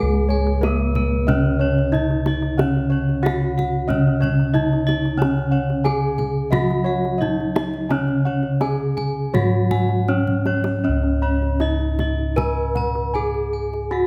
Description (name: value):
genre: Javanese gamelan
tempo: 78-92 BPM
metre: 4/4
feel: straight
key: C# slendro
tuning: A4 = 437 Hz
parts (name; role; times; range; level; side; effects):
- gamelan-type bronze metallophone; melody; 0.0-14.1 s; B3-40c to B4-40c; -26 LUFS; equal; none
- gamelan-type bronze metallophone; accompaniment; 0.0-10.8 s; C#3 to G#3+20c; -25 LUFS; equal; none
- gamelan-type bossed gongs; arpeggios; 0.0-14.1 s; B4-40c to B5-40c; -32 LUFS; equal; none
- gamelan-type bronze metallophone; arpeggios; 0.0-14.1 s; B4-40c to B5-40c; -31 LUFS; equal; none
- gamelan-type bossed gongs; bass; 0.0-14.1 s; C#2 to G#4+20c; -25 LUFS; equal; none
- kendang; percussion; 0.1-13.8 s; none; -31 LUFS; equal; none
room: moderate recital hall reverb, RT60 1.6 s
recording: none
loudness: -20 LUFS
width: mono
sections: 0.0-10.8 A section; 10.8-14.1 B section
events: drum fill 10.1-10.8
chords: none